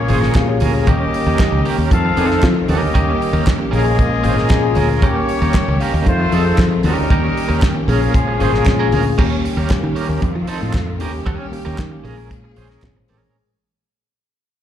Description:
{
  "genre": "disco",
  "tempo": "116 BPM",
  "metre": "4/4",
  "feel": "straight",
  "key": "Bb dorian",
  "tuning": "A4 = 440 Hz",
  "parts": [
    { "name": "mellow tine electric piano", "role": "accompaniment", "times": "0.0-13.5 s", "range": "Bb2 to Bb5", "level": "-20 LUFS", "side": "left 3 dB", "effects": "slow stereo tremolo, slapback echo" },
    { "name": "clear studio string section", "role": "sustained chords", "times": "0.0-13.3 s", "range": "Db3 to Ab4", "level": "-26 LUFS", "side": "left 1 dB", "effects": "none" },
    { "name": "warm horn section", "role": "stabs", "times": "0.0-8.9 s", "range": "F3 to F5", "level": "-22 LUFS", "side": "left 2 dB", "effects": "slapback echo" },
    { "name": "electric guitar at the edge of break-up", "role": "accompaniment", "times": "0.1-13.4 s", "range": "C4 to C5", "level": "-25 LUFS", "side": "right 8 dB", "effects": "tremolo, slapback echo" },
    { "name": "fingered electric bass", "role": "bass", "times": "0.1-13.3 s", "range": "Ab1 to F3", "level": "-19 LUFS", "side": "equal", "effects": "none" },
    { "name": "damped 70s drum kit", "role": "drums", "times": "0.1-13.2 s", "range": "crash cymbal, hi-hat, kick drum, snare drum", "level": "-18 LUFS", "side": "equal", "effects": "none" },
    { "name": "group handclap", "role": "percussion", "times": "0.3-12.9 s", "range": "none", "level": "-33 LUFS", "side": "left 1 dB", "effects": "slapback echo" }
  ],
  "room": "studio ambience",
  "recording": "live gig heard through the venue's PA, club reverb",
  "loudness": "-14 LUFS",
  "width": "side -10 dB against mid",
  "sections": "0.0-9.2 A section; 9.2-13.3 B section",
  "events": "tine electric piano fill 0.1-0.9, 4.2-5.0; fade-out 9.2-13.3",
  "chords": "0.0 Bbm7; 0.9 Eb7; 1.9 F7; 2.7 Eb7; 3.7 Bbm7; 5.0 Eb7; 6.1 F7; 6.8 Eb7; 7.9 Bbm7; 9.2 Eb7; 10.2 F7; 11.0 Eb7; 12.0 Bbm7"
}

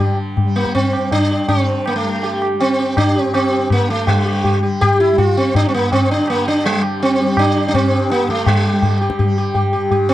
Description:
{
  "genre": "indian classical, Hindustani",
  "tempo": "163 BPM",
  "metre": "3/4",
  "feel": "straight",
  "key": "G raga kafi",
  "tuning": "A4 = 440 Hz",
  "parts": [
    { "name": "sitar", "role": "melody", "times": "0.0-10.1 s", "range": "G3 to G4", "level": "-16 LUFS", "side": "equal", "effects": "none" },
    { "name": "tanpura", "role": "drone", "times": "0.0-10.1 s", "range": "G2 to G3", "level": "-24 LUFS", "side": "left 1 dB", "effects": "none" },
    { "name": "tabla", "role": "percussion", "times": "0.0-10.1 s", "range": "none", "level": "-18 LUFS", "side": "left 1 dB", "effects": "none" }
  ],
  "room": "moderate small room reverb, RT60 0.5 s",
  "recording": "dark, warm production",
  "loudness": "-14 LUFS",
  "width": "side -14 dB against mid",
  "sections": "0.0-4.1 A section; 4.1-10.1 B section",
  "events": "speeding up 0.0-10.1",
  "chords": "none"
}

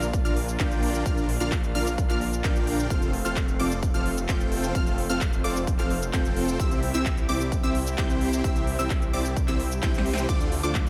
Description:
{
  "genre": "EDM, festival progressive house",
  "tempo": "130 BPM",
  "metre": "4/4",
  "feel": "straight",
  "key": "unclear",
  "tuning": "A4 = 440 Hz",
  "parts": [
    { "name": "lush unison pad", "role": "sustained chords", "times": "0.0-10.9 s", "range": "C3 to G4", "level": "-36 LUFS", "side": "equal", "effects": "chorus, sidechain pumping" },
    { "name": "unison pluck", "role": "arpeggios", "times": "0.0-10.8 s", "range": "D6 to G6", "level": "-38 LUFS", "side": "equal", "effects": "phaser, sidechain pumping, diffuse ambient delay" },
    { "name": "dense compressed supersaw", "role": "riff", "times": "0.0-10.8 s", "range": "C4 to G5", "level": "-32 LUFS", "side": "equal", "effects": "cassette tape, sidechain pumping, diffuse ambient delay" },
    { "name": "detuned saw bass", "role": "bass", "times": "0.0-10.9 s", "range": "F1 to D2", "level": "-32 LUFS", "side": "equal", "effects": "sidechain pumping" },
    { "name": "big-room dance drum kit", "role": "drums", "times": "0.0-10.9 s", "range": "crash cymbal, handclaps, hi-hat, shaker, snare drum", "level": "-37 LUFS", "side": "equal", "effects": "none" },
    { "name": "electronic kick drum", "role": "drums", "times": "0.1-10.8 s", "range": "none", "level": "-28 LUFS", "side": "equal", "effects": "none" }
  ],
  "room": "light reverb, digital ambience",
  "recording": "none",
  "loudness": "-25 LUFS",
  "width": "mono",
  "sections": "0.0-10.9 A section",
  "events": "drum fill 9.8-10.3",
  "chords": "0.0 Bb; 2.9 F; 6.6 C; 10.3 Dm7"
}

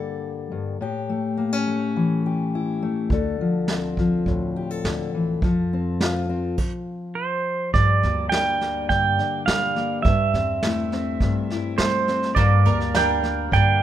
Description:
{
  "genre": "acoustic folk duo or small band",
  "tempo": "104 BPM",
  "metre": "4/4",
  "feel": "straight",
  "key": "G dorian",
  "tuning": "A4 = 443 Hz",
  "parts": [
    { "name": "fingerpicked steel-string acoustic guitar", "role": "accompaniment", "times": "0.0-13.8 s", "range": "G2 to A4", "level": "-24 LUFS", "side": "left 3 dB", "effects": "none" },
    { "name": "upright bass", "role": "bass", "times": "3.1-13.8 s", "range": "D2 to G3", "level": "-25 LUFS", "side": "right 1 dB", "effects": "none" },
    { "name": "vintage brush drum kit", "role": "drums", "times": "3.1-13.7 s", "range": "crash cymbal, kick drum, snare drum", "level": "-25 LUFS", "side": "right 1 dB", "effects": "none" },
    { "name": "pedal steel guitar", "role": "second line", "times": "7.2-13.8 s", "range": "C5 to G5", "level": "-22 LUFS", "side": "right 5 dB", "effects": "none" },
    { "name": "mandolin", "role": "arpeggios", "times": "12.4-13.8 s", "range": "Bb3 to G5", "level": "-24 LUFS", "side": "right 6 dB", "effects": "none" }
  ],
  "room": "light reverb",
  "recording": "minimal, uncompressed stereo recording",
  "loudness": "-20 LUFS",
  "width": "side -11 dB against mid",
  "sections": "0.0-7.7 A section; 7.7-13.8 B section",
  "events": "stop 6.6-7.7; pedal steel guitar solo 7.7-13.8",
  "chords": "0.0 Gm; 0.8 A7; 3.1 Dm7; 5.4 F; 7.7 Gm; 10.1 Am; 12.4 Gm"
}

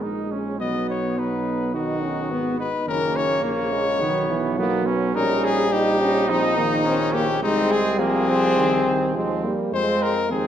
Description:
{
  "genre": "classical, brass quintet",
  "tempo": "105 BPM",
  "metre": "4/4",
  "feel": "rubato",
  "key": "Ab major from 5.1 s",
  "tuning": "A4 = 440 Hz",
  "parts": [
    { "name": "mellow cornet", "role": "melody", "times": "0.0-10.5 s", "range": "Eb4 to D#5", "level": "-24 LUFS", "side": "left 5 dB", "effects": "none" },
    { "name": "dark trumpet", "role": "second line", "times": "0.0-10.5 s", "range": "Bb3 to D#4", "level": "-28 LUFS", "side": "right 7 dB", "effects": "none" },
    { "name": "clear euphonium", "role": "accompaniment", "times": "0.0-10.5 s", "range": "C#3 to Ab3", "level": "-27 LUFS", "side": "right 4 dB", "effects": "none" },
    { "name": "mellow French horn", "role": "accompaniment", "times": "0.0-10.5 s", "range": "F#3 to D#4", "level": "-26 LUFS", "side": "left 2 dB", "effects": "none" },
    { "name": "warm bass trombone", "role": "bass", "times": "0.0-10.5 s", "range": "F#1 to F2", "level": "-27 LUFS", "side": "right 2 dB", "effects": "none" }
  ],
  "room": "wet recital hall reverb, RT60 1.5 s",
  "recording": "none",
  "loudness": "-19 LUFS",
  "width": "side -9 dB against mid",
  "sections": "0.0-10.5 A section",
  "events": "none",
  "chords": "0.0 G#5; 0.6 B; 2.9 F#; 4.0 B; 5.1 Eb7/Bb; 7.4 Ab/C; 9.7 Fm"
}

